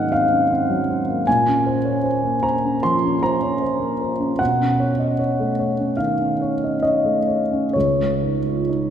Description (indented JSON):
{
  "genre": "classical, impressionist solo piano",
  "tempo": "62-79 BPM",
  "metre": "4/4",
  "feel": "rubato",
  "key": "unclear",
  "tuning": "A4 = 440 Hz",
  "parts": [
    { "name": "clear grand piano", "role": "solo", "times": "0.0-8.9 s", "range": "Db2 to C6", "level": "-18 LUFS", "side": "equal", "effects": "none" }
  ],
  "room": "wet church reverb, RT60 3.5 s",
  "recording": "recorded in a church or concert hall",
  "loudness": "-18 LUFS",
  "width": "side -9 dB against mid",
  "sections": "0.0-8.9 A section",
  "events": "none",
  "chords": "0.0 Ab9; 1.3 Bbmadd9; 4.4 Cb9; 7.7 Dbadd9",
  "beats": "0.49 | 1.27 2.04 2.82 3.61 | 4.40 5.19 5.99 6.83 | 7.75 8.69"
}